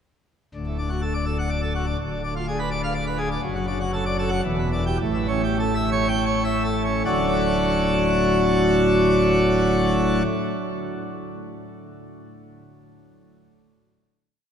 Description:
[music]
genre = classical, organ toccata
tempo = 72-127 BPM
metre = 3/4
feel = straight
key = D major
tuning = A4 = 440 Hz
[part]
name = pipe organ, plenum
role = solo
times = 0.5-10.2 s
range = D1 to G5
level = -20 LUFS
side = equal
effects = none
[sound]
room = wet cathedral reverb, RT60 4.9 s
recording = none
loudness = -20 LUFS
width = side -8 dB against mid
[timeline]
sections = 0.5-7.1 A section; 7.1-12.0 final chord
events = slowing down 2.7-7.1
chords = 0.5 D; 2.0 Ddim7; 3.4 D/F#; 4.4 Em7; 5.0 A7; 7.1 D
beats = | 0.54 1.02 1.50 | 1.98 2.46 2.94 | 3.41 3.91 4.43 | 4.98 5.59 6.27 | 7.06 7.88 8.70 | 9.52

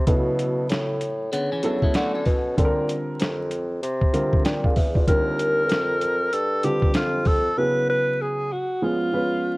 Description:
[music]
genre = hip hop, jazz-hop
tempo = 96 BPM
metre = 4/4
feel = swing 61% on 16ths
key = unclear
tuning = A4 = 441 Hz
[part]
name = mellow bassoon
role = bass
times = 0.0-7.5 s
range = D#2 to D3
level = -25 LUFS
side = equal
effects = none
[part]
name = dark upright piano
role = accompaniment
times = 0.1-9.6 s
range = C#3 to G5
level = -26 LUFS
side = right 1 dB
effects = none
[part]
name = boom bap sampler-style drum kit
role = drums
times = 0.1-7.4 s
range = hi-hat, kick drum, snare drum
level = -22 LUFS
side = equal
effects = none
[part]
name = clean electric guitar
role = second line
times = 1.3-2.6 s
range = D3 to A4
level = -31 LUFS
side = left 1 dB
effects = analog delay
[part]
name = warm alto saxophone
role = melody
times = 5.1-9.6 s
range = E#4 to B4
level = -22 LUFS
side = equal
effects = none
[sound]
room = light reverb, small room ambience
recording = worn, warbling old tape, cassette tape, vinyl crackle, warbly pitch drift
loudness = -20 LUFS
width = side -22 dB against mid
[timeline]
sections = 0.0-9.6 A section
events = drums muted 7.6-9.6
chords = 0.1 B7sus2; 2.6 A#; 5.1 D#69; 7.6 E69/C#; 8.8 C#7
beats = | 0.08 0.70 1.33 1.95 | 2.58 3.20 3.83 4.45 | 5.08 5.70 6.33 6.95 | 7.58 8.20 8.83 9.45

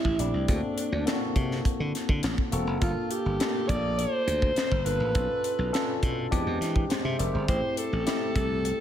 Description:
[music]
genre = polished 1980s jazz-funk pop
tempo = 103 BPM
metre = 4/4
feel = straight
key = unclear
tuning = A4 = 440 Hz
[part]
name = breathy alto saxophone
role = melody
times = 0.0-8.8 s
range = D4 to D5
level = -30 LUFS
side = equal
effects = slapback echo
[part]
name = barky tine electric piano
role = accompaniment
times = 0.0-8.8 s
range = G#3 to E5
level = -31 LUFS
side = left 2 dB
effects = wide subtle chorus, slapback echo
[part]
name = glassy slap bass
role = bass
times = 0.0-8.7 s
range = E1 to E3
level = -29 LUFS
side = equal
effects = none
[part]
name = crisp fusion drum kit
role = drums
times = 0.0-8.8 s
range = hi-hat, kick drum, snare drum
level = -29 LUFS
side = equal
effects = none
[sound]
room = moderate lush hall reverb, RT60 1.6 s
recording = big arena sound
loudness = -25 LUFS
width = side -10 dB against mid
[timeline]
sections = 0.0-8.8 A section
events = none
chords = 0.5 D7b13; 2.8 Gm9; 5.2 Bm7b5; 6.3 E7alt; 7.5 Am7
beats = | 0.49 1.07 1.65 2.24 | 2.82 3.40 3.98 4.57 | 5.15 5.73 6.32 6.90 | 7.48 8.06 8.65

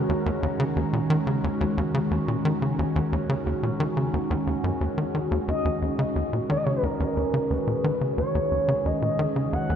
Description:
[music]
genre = ambient, sequencer-driven space music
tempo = 89 BPM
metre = 4/4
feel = straight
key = Eb minor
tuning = A4 = 440 Hz
[part]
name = phased analog pad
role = sustained chords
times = 0.0-9.8 s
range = Eb3 to Bb5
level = -27 LUFS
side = right 1 dB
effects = phaser, chorus
[part]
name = tight sequencer bass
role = riff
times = 0.0-9.7 s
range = Eb2 to Eb3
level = -26 LUFS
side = equal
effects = tape echo
[part]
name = expressive portamento lead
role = melody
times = 5.5-9.8 s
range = Bb4 to Gb5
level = -28 LUFS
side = left 1 dB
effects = lush chorus, tape echo
[sound]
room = wet cathedral reverb, RT60 5.7 s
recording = in a vast, echoing space, nothing above 10.3 kHz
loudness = -23 LUFS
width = side -8 dB against mid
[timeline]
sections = 0.0-9.8 A section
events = none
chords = 0.0 Ebm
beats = | 0.09 0.77 1.44 2.12 | 2.79 3.46 4.14 4.81 | 5.49 6.16 6.83 7.51 | 8.18 8.86 9.53

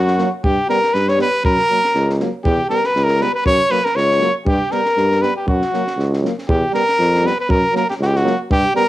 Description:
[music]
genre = balkan folk, Balkan brass band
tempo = 119 BPM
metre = 2/4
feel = swing 55% on 16ths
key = unclear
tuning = A4 = 440 Hz
[part]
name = warm trumpet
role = melody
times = 0.0-8.9 s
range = F#4 to C#5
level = -17 LUFS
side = equal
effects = none
[part]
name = warm alto saxophone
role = second line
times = 0.0-6.2 s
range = F#4 to C#5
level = -26 LUFS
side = left 6 dB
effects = none
[part]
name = clear tuba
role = bass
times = 0.0-8.6 s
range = C#2 to G2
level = -18 LUFS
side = equal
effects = transformer saturation
[part]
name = compact cocktail drum kit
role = percussion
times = 0.1-8.8 s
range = kick drum, snare drum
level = -24 LUFS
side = equal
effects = cassette tape
[part]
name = warm euphonium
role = accompaniment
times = 0.2-8.9 s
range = A#3 to B3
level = -27 LUFS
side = left 7 dB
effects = cassette tape
[part]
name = warm euphonium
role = accompaniment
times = 0.2-8.8 s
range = F#3 to G3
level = -26 LUFS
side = right 7 dB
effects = cassette tape
[sound]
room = light reverb, studio reverb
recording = home recording on cassette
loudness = -14 LUFS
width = side -15 dB against mid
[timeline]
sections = 0.0-6.5 A section; 6.5-8.9 A section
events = none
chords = 0.4 G; 1.4 F#; 2.4 Em; 3.5 F#; 4.5 G; 5.5 F#; 6.5 Em; 7.5 F#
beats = | 0.43 0.93 | 1.44 1.94 | 2.44 2.95 | 3.45 3.95 | 4.46 4.96 | 5.47 5.97 | 6.47 6.98 | 7.48 7.99 | 8.49

